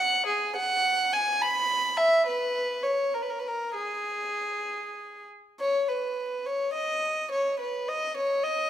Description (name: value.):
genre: classical, baroque-style suite movement for unaccompanied violin.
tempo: 64-72 BPM (dotted quarters).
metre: 6/8.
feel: rubato.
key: G# minor.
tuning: A4 = 440 Hz.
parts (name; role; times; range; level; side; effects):
warm violin; solo; 0.0-8.7 s; G#4 to B5; -25 LUFS; equal; none.
room: moderate recital hall reverb, RT60 1.4 s.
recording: minimal, uncompressed stereo recording.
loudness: -25 LUFS.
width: side -11 dB against mid.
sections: 0.0-5.6 A section; 5.6-8.7 B section.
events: none.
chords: none.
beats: | 0.28 1.12 | 1.97 2.84 | 3.74 4.66 | 5.58 6.44 | 7.30 8.16.